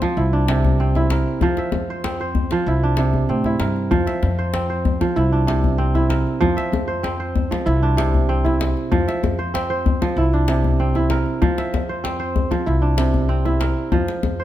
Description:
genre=west african traditional, West African string and xylophone music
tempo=96 BPM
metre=4/4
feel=straight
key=unclear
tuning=A4 = 440 Hz
part: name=kora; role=arpeggios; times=0.0-14.4 s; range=C3 to E5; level=-21 LUFS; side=right 2 dB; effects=none
part: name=upright bass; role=bass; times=0.0-14.4 s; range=C2 to A2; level=-21 LUFS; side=equal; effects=none
part: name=djembe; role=percussion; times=0.0-14.4 s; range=none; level=-24 LUFS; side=left 4 dB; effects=none
room=light reverb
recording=close, detailed microphones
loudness=-17 LUFS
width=side -13 dB against mid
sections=0.0-13.9 A section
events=none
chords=0.2 C; 1.4 F5; 2.7 C; 3.9 F5; 5.2 C; 6.4 F5; 7.7 C; 8.9 F5; 10.2 C; 11.4 F5; 12.7 C; 13.9 F5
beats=0.18 0.80 | 1.42 2.05 2.67 3.29 | 3.92 4.54 5.17 5.79 | 6.42 7.04 7.67 8.29 | 8.92 9.55 10.17 10.80 | 11.42 12.05 12.68 13.30 | 13.93

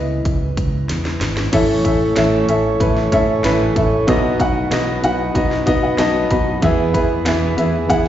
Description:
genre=piano-driven pop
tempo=94 BPM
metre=4/4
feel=straight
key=unclear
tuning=A4 = 440 Hz
part: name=dark upright piano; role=accompaniment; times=0.0-8.1 s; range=A2 to B5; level=-17 LUFS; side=left 1 dB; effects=slapback echo
part: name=glass harmonica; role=sustained chords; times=0.0-8.1 s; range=G#3 to C#6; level=-28 LUFS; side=right 2 dB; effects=none
part: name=fingered electric bass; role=bass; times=0.0-8.1 s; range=G#1 to B2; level=-22 LUFS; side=equal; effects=none
part: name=house drum kit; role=drums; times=0.3-8.1 s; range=crash cymbal, hi-hat, kick drum, snare drum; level=-22 LUFS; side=equal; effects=none
part: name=fingerpicked steel-string acoustic guitar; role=riff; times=1.5-8.1 s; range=E2 to A4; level=-23 LUFS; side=right 7 dB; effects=slapback echo
room=light reverb, small room ambience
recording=live gig heard through the venue's PA, recital hall reverb, nothing above 7.7 kHz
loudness=-14 LUFS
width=side -11 dB against mid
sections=0.0-1.5 A section; 1.5-8.1 B section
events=upright piano solo 0.0-1.5; drum fill 0.9-1.5; upright piano fill 5.4-6.6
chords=0.0 C#m7; 1.5 A; 4.1 B; 6.6 E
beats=0.26 0.89 | 1.53 2.17 2.80 3.44 | 4.08 4.71 5.35 5.99 | 6.62 7.26 7.90

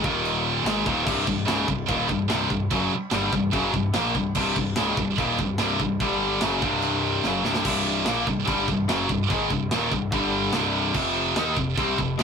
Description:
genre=heavy metal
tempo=146 BPM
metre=4/4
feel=straight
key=C minor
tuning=A4 = 442 Hz
part: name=distorted electric guitar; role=riff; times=0.0-12.2 s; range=C2 to Eb4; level=-25 LUFS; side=left 4 dB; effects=overdrive
part: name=heavy high-gain guitar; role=riff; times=0.0-12.2 s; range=C2 to Eb4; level=-25 LUFS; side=right 7 dB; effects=distortion
part: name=growling picked electric bass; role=bass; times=0.0-12.2 s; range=C1 to Eb2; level=-34 LUFS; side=equal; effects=overdrive
part: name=tight metal drum kit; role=drums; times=0.0-12.2 s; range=china cymbal, crash cymbal, kick drum, snare drum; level=-29 LUFS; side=right 1 dB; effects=none
room=moderate booth ambience, RT60 0.2 s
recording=rough rehearsal-room recording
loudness=-21 LUFS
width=side -6 dB against mid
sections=0.0-7.6 A section; 7.6-12.2 B section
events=drum fill 7.2-7.6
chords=0.0 Eb5; 1.1 Cm; 6.0 G5; 6.4 C5; 7.6 Cm; 10.1 G5; 10.5 C5; 10.9 F5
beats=0.24 0.65 | 1.06 1.47 1.89 2.30 | 2.71 3.12 3.53 3.94 | 4.35 4.76 5.17 5.59 | 6.00 6.41 6.82 7.23 | 7.64 8.06 8.47 8.88 | 9.29 9.71 10.12 10.53 | 10.95 11.36 11.77 12.19

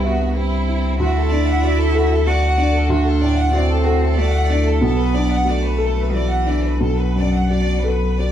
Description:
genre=neoclassical piano and strings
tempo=93 BPM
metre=3/4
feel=uneven beats, rubato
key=unclear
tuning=A4 = 442 Hz
part: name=clear chamber violin section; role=melody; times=0.0-8.3 s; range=E4 to F#5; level=-24 LUFS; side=left 1 dB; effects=none
part: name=clear cello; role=second line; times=0.0-8.3 s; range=E3 to F#4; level=-22 LUFS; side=right 4 dB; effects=none
part: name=warm upright piano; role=accompaniment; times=0.0-8.3 s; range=B1 to E5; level=-22 LUFS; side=left 1 dB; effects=none
part: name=warm sub bass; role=bass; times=0.0-8.3 s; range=B1 to D2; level=-19 LUFS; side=equal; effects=none
room=moderate studio reverb, RT60 0.8 s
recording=band playing live in one room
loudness=-15 LUFS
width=side -10 dB against mid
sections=0.0-8.3 A section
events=none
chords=0.0 C; 1.0 D; 4.8 Bm7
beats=0.36 | 0.99 1.63 2.27 | 2.90 3.54 4.18 | 4.82 5.46 6.13 | 6.82 7.51 8.19

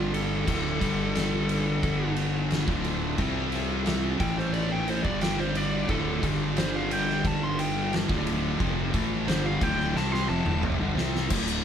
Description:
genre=stoner and doom metal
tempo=89 BPM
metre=4/4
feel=straight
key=D minor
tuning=A4 = 442 Hz
part: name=fuzz lead guitar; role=melody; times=0.0-10.6 s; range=F4 to C6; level=-32 LUFS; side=equal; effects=distortion
part: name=biting overdriven guitar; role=riff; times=0.0-11.3 s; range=D2 to C4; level=-35 LUFS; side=equal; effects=none
part: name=thick fuzz guitar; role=riff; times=0.0-11.6 s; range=D2 to C4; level=-31 LUFS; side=left 7 dB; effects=distortion
part: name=thick fuzz guitar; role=riff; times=0.0-11.6 s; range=D2 to C4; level=-32 LUFS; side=right 4 dB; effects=distortion
part: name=fuzz fingered electric bass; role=bass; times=0.0-11.6 s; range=D1 to C2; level=-33 LUFS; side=equal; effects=overdrive
part: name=oversized low-tuned drum kit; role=drums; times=0.1-11.6 s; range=crash cymbal, hi-hat, kick drum, ride cymbal, snare drum, toms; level=-29 LUFS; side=right 1 dB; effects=none
room=moderate studio reverb, RT60 0.7 s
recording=band playing live in one room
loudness=-24 LUFS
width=side -8 dB against mid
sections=0.0-11.3 A section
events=lead electric guitar solo 0.0-11.3; drum fill 10.0-11.3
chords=0.5 D5; 0.8 G5; 2.7 D5; 3.2 C5; 4.2 A5; 5.0 G5; 5.9 D5; 6.2 G5; 8.1 Dm; 11.3 D5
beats=| 0.47 1.15 1.82 2.50 | 3.18 3.86 4.54 5.21 | 5.89 6.57 7.25 7.92 | 8.60 9.28 9.95 10.63 | 11.30

